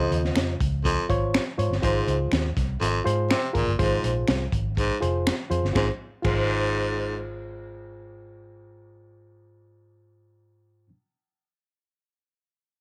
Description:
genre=uptempo 1960s-style soul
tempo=122 BPM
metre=4/4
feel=straight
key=Ab major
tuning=A4 = 441 Hz
part: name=reed electric piano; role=accompaniment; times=0.0-10.9 s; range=Ab2 to Eb5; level=-32 LUFS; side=equal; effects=overdrive
part: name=growling baritone saxophone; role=riff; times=0.0-7.2 s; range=F2 to C3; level=-29 LUFS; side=equal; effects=none
part: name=vintage muted fingered electric bass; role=bass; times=0.0-10.9 s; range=F1 to Ab2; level=-29 LUFS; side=equal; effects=none
part: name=crunchy breakbeat drum kit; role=drums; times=0.1-6.4 s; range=crash cymbal, hi-hat, kick drum, snare drum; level=-30 LUFS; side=equal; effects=none
part: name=finger snap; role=percussion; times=0.4-6.4 s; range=none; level=-36 LUFS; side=equal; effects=none
room=small room ambience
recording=none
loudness=-25 LUFS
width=mono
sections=0.0-5.8 A section; 5.8-9.7 B section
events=none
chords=0.0 Dbmaj7; 1.8 Ab6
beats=0.36 0.85 1.34 | 1.83 2.32 2.81 3.30 | 3.79 4.28 4.77 5.26 | 5.75 6.25 6.74 7.23 | 7.72 8.21 8.70 9.19

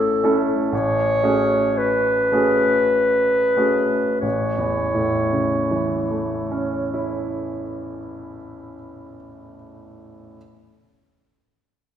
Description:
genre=classical, impressionist duo for clarinet and grand piano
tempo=44-64 BPM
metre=3/4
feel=rubato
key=A major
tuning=A4 = 440 Hz
part: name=clear clarinet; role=melody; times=0.0-7.2 s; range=A4 to C#5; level=-20 LUFS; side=left 1 dB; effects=none
part: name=clear baby grand piano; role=accompaniment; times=0.0-10.4 s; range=A1 to A4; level=-23 LUFS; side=right 1 dB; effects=none
room=wet scoring stage reverb, RT60 1.7 s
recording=heard from further back in the room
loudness=-18 LUFS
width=side -9 dB against mid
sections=0.0-4.2 A section; 4.2-8.1 B section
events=slowing down 0.0-4.2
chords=0.0 A; 0.7 F#madd9/A; 4.2 A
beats=| 0.72 1.76 2.92 | 4.23 5.54 6.82

